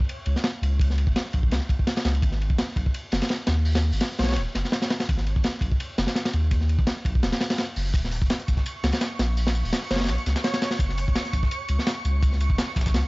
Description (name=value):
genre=drum and bass, jungle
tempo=168 BPM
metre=4/4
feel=swing 54% on 16ths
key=unclear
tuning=A4 = 439 Hz
part: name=crunchy breakbeat drum kit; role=drums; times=0.0-13.0 s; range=hi-hat, kick drum, ride cymbal, snare drum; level=-24 LUFS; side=equal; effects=none
part: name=saturated sub bass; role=bass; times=0.3-13.0 s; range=Eb1 to Eb2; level=-24 LUFS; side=equal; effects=none
part: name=plucky unison lead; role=melody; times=4.2-4.4, 9.9-10.8 s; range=Db5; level=-37 LUFS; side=equal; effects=dub echo
part: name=dusty soul sampler-style drum kit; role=drums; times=7.9-13.0 s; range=hi-hat, snare drum, tambourine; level=-37 LUFS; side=equal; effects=high-pass filter on perc, high-pass filter on hats, high-pass filter on snare
part: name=twinkling granular texture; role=texture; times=8.5-13.1 s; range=Db6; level=-36 LUFS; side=right 3 dB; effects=built-in reverb
room=studio ambience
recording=dry, gritty hardware recording, vinyl crackle, nothing above 7.6 kHz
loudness=-22 LUFS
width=side -24 dB against mid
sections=0.0-13.1 A section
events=none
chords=0.0 N.C.; 2.2 Abm7; 7.9 Eb7(no3); 10.8 Gb